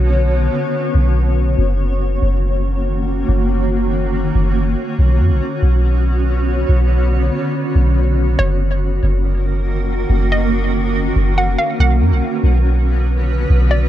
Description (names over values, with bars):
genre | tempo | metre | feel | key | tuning
hip hop, atmospheric cloud-rap | 141 BPM | 4/4 | half-time | F# major | A4 = 435 Hz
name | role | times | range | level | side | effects
granular cloud pad | sustained chords | 0.0-13.9 s | D3 to C#5 | -20 LUFS | equal | built-in reverb
soft 808-style bass | bass | 0.0-13.9 s | F#1 to F#2 | -15 LUFS | equal | none
hollow square pluck | melody | 8.4-13.9 s | C#5 to F#5 | -22 LUFS | equal | chorus, tape echo
room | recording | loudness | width
little or no reverb | dark, warm production | -14 LUFS | side -12 dB against mid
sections
0.0-8.4 A section; 8.4-13.9 B section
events
none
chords
0.0 Bmadd9; 1.6 F#6; 5.0 Bmadd9; 8.4 F#6; 11.8 Bmadd9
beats
0.31 0.73 1.16 | 1.58 2.01 2.43 2.86 | 3.29 3.71 4.14 4.56 | 4.99 5.41 5.84 6.26 | 6.69 7.12 7.54 7.97 | 8.39 8.82 9.24 9.67 | 10.09 10.52 10.95 11.37 | 11.80 12.22 12.65 13.07 | 13.50